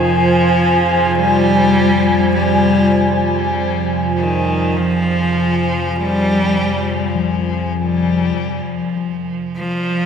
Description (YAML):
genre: dark ambient drone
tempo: 50 BPM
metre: 4/4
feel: straight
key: F minor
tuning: A4 = 440 Hz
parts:
  - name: bright cello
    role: melody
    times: 0.0-10.1 s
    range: Eb3 to G3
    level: -17 LUFS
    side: left 1 dB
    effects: ping-pong delay
  - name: dark analog pad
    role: sustained chords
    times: 0.0-8.4 s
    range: F3 to Ab5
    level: -18 LUFS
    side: right 1 dB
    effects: chorus
  - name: bronze singing bowl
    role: arpeggios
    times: 0.0-10.1 s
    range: C3 to F3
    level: -26 LUFS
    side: left 1 dB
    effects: ping-pong delay
  - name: deep rumbling drone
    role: drone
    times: 0.0-10.1 s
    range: F2 to F3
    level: -22 LUFS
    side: left 2 dB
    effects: built-in reverb
  - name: wind-like tuned noise texture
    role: texture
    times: 0.0-8.4 s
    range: Ab5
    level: -25 LUFS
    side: right 1 dB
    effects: built-in reverb
room: wet lush hall reverb, RT60 2.5 s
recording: dreamy mix soaked in reverb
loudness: -14 LUFS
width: side -7 dB against mid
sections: 0.0-8.4 A section; 8.4-10.1 B section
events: filter sweep on synth drone 8.4-10.1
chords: 0.0 Fmadd9; 8.4 N.C.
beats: 1.16 2.36 | 3.56 4.76 5.96 7.16 | 8.36 9.56